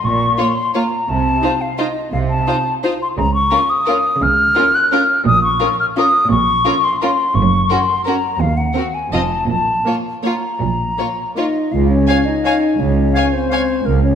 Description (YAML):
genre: classical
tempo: 153-187 BPM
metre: 3/4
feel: rubato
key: Bb minor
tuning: A4 = 439 Hz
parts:
  - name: hollow concert flute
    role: second line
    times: 0.0-14.2 s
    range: Bb4 to Gb6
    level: -17 LUFS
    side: left 2 dB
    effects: none
  - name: rich chamber cello section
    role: bass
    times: 0.1-14.1 s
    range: Db2 to Db3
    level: -21 LUFS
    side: right 4 dB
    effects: none
  - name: rich studio double bass section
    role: bass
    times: 0.1-14.1 s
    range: F1 to Eb2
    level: -21 LUFS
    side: right 3 dB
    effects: none
  - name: rich chamber violin section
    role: melody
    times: 0.4-13.6 s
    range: Bb4 to Ab5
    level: -26 LUFS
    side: left 4 dB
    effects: none
  - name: rich chamber violin section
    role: second line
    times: 0.4-13.6 s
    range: F4 to F5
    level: -26 LUFS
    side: left 1 dB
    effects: none
  - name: warm chamber viola section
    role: accompaniment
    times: 0.4-13.6 s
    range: Bb3 to Db5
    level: -25 LUFS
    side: right 3 dB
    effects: none
  - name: mellow French horn section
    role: sustained chords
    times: 11.4-14.2 s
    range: Bb3 to F4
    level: -17 LUFS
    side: left 4 dB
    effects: none
  - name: clear oboe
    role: second line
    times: 12.1-13.6 s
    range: Ab5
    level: -27 LUFS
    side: right 1 dB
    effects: none
  - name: warm clarinet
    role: second line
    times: 12.1-13.6 s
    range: F5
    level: -28 LUFS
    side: left 1 dB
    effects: none
room: moderate scoring stage reverb, RT60 1.8 s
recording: minimal, uncompressed stereo recording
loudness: -14 LUFS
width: side -8 dB against mid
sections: 0.0-11.7 A section; 11.7-14.2 B section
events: none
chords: 0.0 Bbm; 1.1 F7/C; 3.2 Bbm/Db; 5.3 Bbm; 7.4 Gb; 8.4 Cdim/Eb (rootless); 9.1 F; 9.5 N.C.; 11.7 Db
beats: | 0.05 0.39 0.75 | 1.09 1.43 1.79 | 2.13 2.48 2.84 | 3.18 3.52 3.88 | 4.22 4.56 4.92 | 5.26 5.61 5.97 | 6.31 6.66 7.02 | 7.36 7.71 8.07 | 8.41 8.76 9.13 | 9.50 9.86 10.25 | 10.61 10.98 11.36 | 11.72 12.08 12.45 | 12.80 13.15 13.52 | 13.86